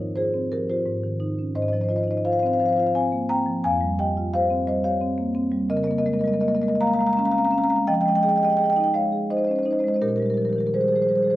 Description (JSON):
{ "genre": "classical, contemporary piece for solo marimba", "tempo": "86 BPM", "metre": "3/4", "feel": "rubato", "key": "F minor from 5.7 s", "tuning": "A4 = 440 Hz", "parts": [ { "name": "marimba with soft mallets", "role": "solo", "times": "0.0-11.4 s", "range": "F2 to Bb5", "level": "-20 LUFS", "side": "equal", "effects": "none" } ], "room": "light reverb", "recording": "dark, warm production", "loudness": "-20 LUFS", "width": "side -15 dB against mid", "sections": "0.0-11.4 A section", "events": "none", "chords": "0.0 Abmaj13; 0.9 Cm/Ab; 1.6 Ab6; 3.7 Fsus2; 5.7 Db69; 7.9 Fm7; 10.0 Bb5" }